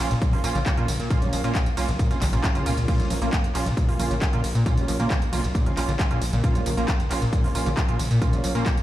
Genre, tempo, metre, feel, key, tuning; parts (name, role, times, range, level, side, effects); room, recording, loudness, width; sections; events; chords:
driving peak-time techno; 135 BPM; 4/4; straight; Bb phrygian; A4 = 440 Hz
sync-sweep polysynth; stabs; 0.0-8.6 s; Bb3 to F4; -29 LUFS; right 3 dB; chorus, cassette tape, sidechain pumping, tape echo
gritty driven synth bass; bass; 0.0-8.6 s; Bb1 to Bb2; -26 LUFS; equal; sidechain pumping
overdriven acid bass; riff; 0.1-8.6 s; Bb1 to Bb3; -28 LUFS; left 1 dB; distortion, lush chorus, vintage 12-bit sampler grit, sidechain pumping, tape echo
techno drum kit; drums; 0.1-8.8 s; crash cymbal, handclaps, hi-hat, ride cymbal, tambourine, toms; -30 LUFS; equal; overdrive, sidechain pumping on hats, sidechain pumping on cymbals, sidechain pumping on perc, sidechain pumping on toms
electronic kick drum; drums; 0.2-8.8 s; -24 LUFS; equal; overdrive
light reverb; played on a big sound system in a bare room, stone room reverb; -21 LUFS; side -14 dB against mid
0.0-8.8 A section
0.0 Bbm